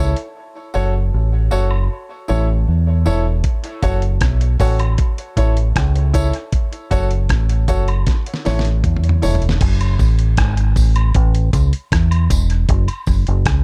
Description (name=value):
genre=dub reggae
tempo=78 BPM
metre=4/4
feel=straight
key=F# minor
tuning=A4 = 440 Hz
part: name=clear concert grand piano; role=stabs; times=0.0-9.4 s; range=E4 to C#5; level=-27 LUFS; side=equal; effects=dub echo
part: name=deep dub fingered electric bass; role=bass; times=0.0-13.6 s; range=E1 to E2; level=-18 LUFS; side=equal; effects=none
part: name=dusty soul sampler-style drum kit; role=drums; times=0.2-13.6 s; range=crash cymbal, hi-hat, kick drum, rim click, snare drum, toms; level=-20 LUFS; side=equal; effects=none
part: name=tambourine and woodblock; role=percussion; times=0.7-13.2 s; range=none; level=-35 LUFS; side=equal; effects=dub echo
room=little or no reverb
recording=none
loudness=-17 LUFS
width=mono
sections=0.0-9.6 A section; 9.6-13.6 B section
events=part muted 0.4-3.4; drum fill 8.1-9.6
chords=0.4 F#m; 1.9 A; 3.4 F#m; 5.0 A; 6.5 F#m; 8.1 A; 9.6 F#m; 11.1 A5; 12.7 F#5